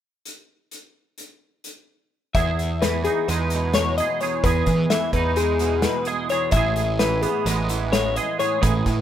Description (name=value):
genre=math rock and midwest emo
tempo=258 BPM (eighths)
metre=9/8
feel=straight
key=E major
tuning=A4 = 439 Hz
part: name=loose indie drum kit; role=drums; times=0.3-9.0 s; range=hi-hat, kick drum, snare drum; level=-26 LUFS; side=equal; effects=none
part: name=twelve-string electric guitar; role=arpeggios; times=2.3-9.0 s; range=G#4 to E5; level=-24 LUFS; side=left 6 dB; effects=none
part: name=twangy electric guitar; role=accompaniment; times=2.4-9.0 s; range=E2 to G#4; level=-26 LUFS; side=right 8 dB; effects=analog chorus
part: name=fuzz picked electric bass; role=bass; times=2.4-9.0 s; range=A1 to E3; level=-24 LUFS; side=right 1 dB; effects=overdrive
room=small room ambience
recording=rough home demo mix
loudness=-19 LUFS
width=side -10 dB against mid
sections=0.3-2.3 A section; 2.3-9.0 B section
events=none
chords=0.3 N.C.; 2.3 Emaj7; 6.5 Amaj9